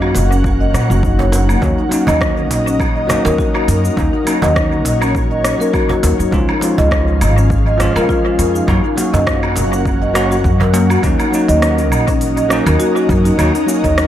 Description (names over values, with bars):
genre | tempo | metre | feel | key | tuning
organic downtempo | 102 BPM | 4/4 | swing 55% on 16ths | Eb minor | A4 = 439 Hz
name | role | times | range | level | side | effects
bell-like tine electric piano | accompaniment | 0.0-14.1 s | F3 to Bb4 | -19 LUFS | right 1 dB | sidechain pumping, dub echo
ethereal airy pad | sustained chords | 0.0-14.1 s | Db4 to Gb5 | -23 LUFS | equal | ensemble chorus, built-in reverb, sidechain pumping
marimba with soft mallets | arpeggios | 0.0-14.0 s | Bb3 to Eb5 | -18 LUFS | left 2 dB | low-pass filter, dub echo
upright bass | bass | 0.0-14.1 s | Gb1 to Bb2 | -16 LUFS | equal | sidechain pumping
organic electronic drum kit | drums | 0.0-14.1 s | cabasa, hi-hat, rim click, woodblock | -22 LUFS | equal | overdrive, dub echo
cajon | percussion | 0.1-10.9 s | none | -25 LUFS | right 2 dB | none
electronic kick drum | drums | 0.4-13.9 s | none | -20 LUFS | equal | overdrive
room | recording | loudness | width
moderate spring reverb, RT60 2.5 s | echo-heavy mix | -12 LUFS | side -11 dB against mid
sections
0.0-11.0 A section; 11.0-14.1 B section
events
none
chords
0.0 Gb; 1.6 Ebm7; 6.3 Db; 8.7 Gb; 11.0 Ebm7